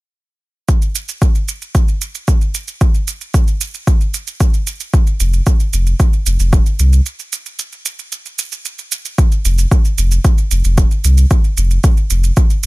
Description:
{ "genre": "dub techno", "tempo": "113 BPM", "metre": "4/4", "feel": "straight", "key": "unclear", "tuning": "A4 = 442 Hz", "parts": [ { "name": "electronic kick drum", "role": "drums", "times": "0.7-12.5 s", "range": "none", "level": "-12 LUFS", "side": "equal", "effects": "overdrive" }, { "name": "shaker", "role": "drums", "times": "0.7-12.7 s", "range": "none", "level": "-23 LUFS", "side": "right 7 dB", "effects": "overdrive" }, { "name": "warm sub bass", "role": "bass", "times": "5.2-12.7 s", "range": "F1 to C2", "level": "-12 LUFS", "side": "equal", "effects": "sidechain pumping" } ], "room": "little or no reverb", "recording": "none", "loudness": "-12 LUFS", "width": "side -22 dB against mid", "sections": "0.7-9.2 A section; 9.2-12.7 B section", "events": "break 7.1-9.2", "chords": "none", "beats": "| 0.69 1.22 1.75 2.28 | 2.81 3.34 3.87 4.40 | 4.93 5.47 6.00 6.53 | 7.06 7.59 8.12 8.65 | 9.18 9.71 10.24 10.78 | 11.31 11.84 12.37" }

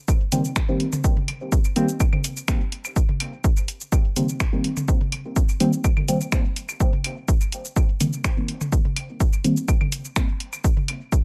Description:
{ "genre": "dub techno", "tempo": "125 BPM", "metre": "4/4", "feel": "straight", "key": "C minor", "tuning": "A4 = 441 Hz", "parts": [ { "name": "electronic kick drum", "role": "drums", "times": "0.1-11.2 s", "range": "none", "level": "-22 LUFS", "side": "equal", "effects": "none" }, { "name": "punchy analog drum machine", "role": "drums", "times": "0.1-11.2 s", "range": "finger snaps, hi-hat, shaker", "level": "-31 LUFS", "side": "equal", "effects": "dub echo" }, { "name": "deep mellow chord stab", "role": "stabs", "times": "0.3-9.5 s", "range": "Eb3 to C4", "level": "-28 LUFS", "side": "equal", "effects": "chorus, phaser, sidechain pumping, dub echo" }, { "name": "electronic toms and claves", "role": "percussion", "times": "0.3-11.0 s", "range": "none", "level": "-32 LUFS", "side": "equal", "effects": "sidechain pumping on toms, sidechain pumping on perc, dub echo" } ], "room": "light reverb", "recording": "echo-heavy mix", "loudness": "-23 LUFS", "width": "mono", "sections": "0.0-11.2 A section", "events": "filter sweep on synth stab 0.0-11.2", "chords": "0.0 Cm7", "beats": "0.08 0.56 | 1.04 1.52 2.00 2.48 | 2.96 3.44 3.92 4.40 | 4.88 5.36 5.84 6.32 | 6.80 7.28 7.76 8.24 | 8.72 9.20 9.68 10.16 | 10.64 11.12" }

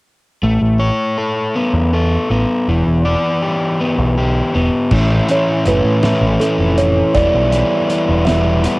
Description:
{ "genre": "indie rock", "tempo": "54 BPM (dotted quarters)", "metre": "6/8", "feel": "straight", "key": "A mixolydian", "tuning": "A4 = 440 Hz", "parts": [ { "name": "crunchy overdriven guitar", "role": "riff", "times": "0.4-8.8 s", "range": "A2 to D5", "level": "-15 LUFS", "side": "left 1 dB", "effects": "cassette tape" }, { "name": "growling picked electric bass", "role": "bass", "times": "0.4-8.7 s", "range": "E1 to A2", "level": "-16 LUFS", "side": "equal", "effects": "overdrive" }, { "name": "cloth-damped thuddy drum kit", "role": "drums", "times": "4.9-8.8 s", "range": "crash cymbal, hi-hat, kick drum, snare drum", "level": "-22 LUFS", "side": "equal", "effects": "cassette tape" }, { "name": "kalimba", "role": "melody", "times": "5.3-8.8 s", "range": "A4 to E5", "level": "-17 LUFS", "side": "right 2 dB", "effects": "tape echo" } ], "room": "light reverb", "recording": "home recording on cassette", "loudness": "-13 LUFS", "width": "side -22 dB against mid", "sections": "0.4-4.9 A section; 4.9-8.8 B section", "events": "none", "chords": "0.4 Aadd9; 2.7 Em7; 4.9 Aadd9; 7.2 Em7", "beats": "| 0.43 1.55 | 2.67 3.79 | 4.91 6.04 | 7.16 8.28" }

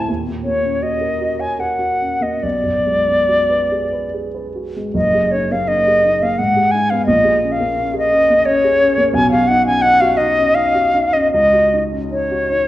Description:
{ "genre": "classical, impressionist duo for flute and grand piano", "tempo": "69-89 BPM", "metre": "3/4", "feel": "rubato", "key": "F# major", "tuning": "A4 = 440 Hz", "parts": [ { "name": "bright concert flute", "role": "melody", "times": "0.0-12.7 s", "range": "C#5 to G#5", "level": "-14 LUFS", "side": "equal", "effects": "none" }, { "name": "dark grand piano", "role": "accompaniment", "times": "0.0-12.7 s", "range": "F#1 to C#5", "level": "-20 LUFS", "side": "equal", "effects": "none" } ], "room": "wet recital hall reverb, RT60 1.3 s", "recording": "worn, warbling old tape, cassette tape, warbly pitch drift", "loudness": "-13 LUFS", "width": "side -14 dB against mid", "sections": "0.0-5.0 A section; 5.0-12.7 B section", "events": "none", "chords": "0.1 D#m7; 2.4 Bm6; 5.0 F#69; 6.4 G#m7; 7.1 A#m7; 9.1 Badd9; 11.3 C#sus24", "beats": "| 0.09 0.83 1.60 | 2.43 3.29 4.13 | 4.95 5.69 6.39 | 7.08 7.76 8.46 | 9.14 9.84 10.56 | 11.34 12.12" }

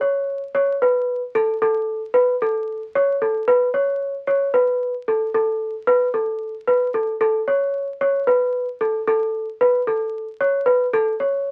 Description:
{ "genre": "progressive instrumental, progressive", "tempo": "225 BPM (eighths)", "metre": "7/8", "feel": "straight", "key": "unclear", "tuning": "A4 = 440 Hz", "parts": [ { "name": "worn celesta", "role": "solo", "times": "0.0-11.5 s", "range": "A4 to C#5", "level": "-20 LUFS", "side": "equal", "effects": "none" } ], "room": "light reverb", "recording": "very old 78 rpm record, vinyl crackle", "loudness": "-21 LUFS", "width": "mono", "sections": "0.0-11.5 A section", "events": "none", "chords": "none", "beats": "0.01 0.27 0.54 0.81 1.07 1.34 | 1.61 1.88 2.14 2.41 2.67 2.94 3.21 | 3.48 3.74 4.01 4.28 4.54 4.81 5.07 | 5.34 5.61 5.87 6.14 6.41 6.67 6.94 | 7.20 7.47 7.73 8.00 8.27 8.53 8.80 | 9.06 9.33 9.60 9.86 10.13 10.39 10.66 | 10.92 11.19 11.46" }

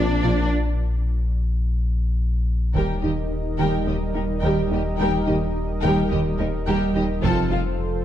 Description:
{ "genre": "cinematic, hybrid orchestral and electronic film score", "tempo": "107 BPM", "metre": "4/4", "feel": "straight", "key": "unclear", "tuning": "A4 = 440 Hz", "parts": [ { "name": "rich symphonic violin section", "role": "second line", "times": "0.0-7.6 s", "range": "Eb4 to A5", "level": "-29 LUFS", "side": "left 4 dB", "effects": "none" }, { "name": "rich symphonic viola section", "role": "accompaniment", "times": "0.0-7.6 s", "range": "G3 to G4", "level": "-27 LUFS", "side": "right 2 dB", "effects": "none" }, { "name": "dark French horn section", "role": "sustained chords", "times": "0.0-0.5 s", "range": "C4 to D4", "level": "-34 LUFS", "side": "left 4 dB", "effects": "none" }, { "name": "dark trombone section", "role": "sustained chords", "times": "0.0-0.5 s", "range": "Bb2 to F3", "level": "-30 LUFS", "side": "left 1 dB", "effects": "none" }, { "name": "warm analog pad", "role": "sustained chords", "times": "0.0-8.0 s", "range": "F3 to Eb5", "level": "-29 LUFS", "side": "right 1 dB", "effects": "chorus" }, { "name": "thumb-piano-like synth pluck", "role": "arpeggios", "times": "0.0-7.7 s", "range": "Eb3 to F4", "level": "-28 LUFS", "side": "right 2 dB", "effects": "chorus, digital delay" }, { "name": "clear symphonic double bass section", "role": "bass", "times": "0.0-7.6 s", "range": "F1 to Eb2", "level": "-28 LUFS", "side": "right 3 dB", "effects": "none" }, { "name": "rich symphonic cello section", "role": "bass", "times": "0.0-7.6 s", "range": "Eb2 to D4", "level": "-31 LUFS", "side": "right 2 dB", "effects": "none" }, { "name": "sub bass with octave", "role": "bass", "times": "0.0-8.0 s", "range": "Eb1 to Bb1", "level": "-24 LUFS", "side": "left 1 dB", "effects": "none" }, { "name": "taiko ensemble", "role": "drums", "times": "2.8-3.8, 7.2-8.0 s", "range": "none", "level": "-31 LUFS", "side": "left 1 dB", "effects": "none" } ], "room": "moderate concert hall reverb, RT60 1.8 s", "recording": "dark, warm production", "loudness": "-20 LUFS", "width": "side -11 dB against mid", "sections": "0.0-2.8 A section; 2.8-8.0 B section", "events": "break 0.5-2.8; drum fill 1.9-2.8", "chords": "0.0 Bbadd9; 2.8 Eb; 7.2 F", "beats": "| 0.51 1.07 1.63 2.19 | 2.75 3.31 3.87 4.43 | 5.00 5.56 6.12 6.68 | 7.24 7.80" }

